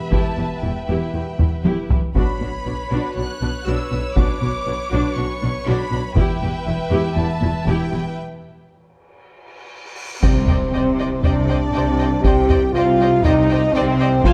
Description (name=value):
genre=cinematic, epic orchestral film score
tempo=119 BPM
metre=4/4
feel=straight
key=C minor from 10.2 s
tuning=A4 = 439 Hz
part: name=warm symphonic violin section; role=melody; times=0.0-14.3 s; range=C5 to F#6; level=-33 LUFS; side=equal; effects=none
part: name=rich symphonic violin section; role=second line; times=0.0-14.3 s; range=B4 to Ab5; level=-33 LUFS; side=equal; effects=none
part: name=warm French horn section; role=sustained chords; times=0.0-14.3 s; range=B3 to G4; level=-23 LUFS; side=equal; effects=none
part: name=warm symphonic viola section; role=accompaniment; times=0.1-14.3 s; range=D4 to D5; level=-30 LUFS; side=equal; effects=none
part: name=warm symphonic cello section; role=bass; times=0.1-14.3 s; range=E2 to C3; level=-26 LUFS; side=equal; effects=none
part: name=warm symphonic double bass section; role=bass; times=0.1-14.3 s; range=E1 to C2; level=-26 LUFS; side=equal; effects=none
part: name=solo taiko drums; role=drums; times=0.1-6.6, 10.2-14.3 s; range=none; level=-22 LUFS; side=equal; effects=none
part: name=cymbal swell and impact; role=sound effects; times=9.5-12.2 s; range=none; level=-32 LUFS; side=equal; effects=none
room=moderate scoring stage reverb, RT60 1.9 s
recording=none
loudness=-19 LUFS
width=mono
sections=0.0-10.2 A section; 10.2-14.3 A section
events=drum fill 1.4-2.2; break 8.2-10.2; cymbal swell 9.5-10.2; impact 10.2-12.2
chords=0.0 Em; 2.2 Bmadd9; 6.2 Em; 8.2 N.C.; 10.2 Cmadd9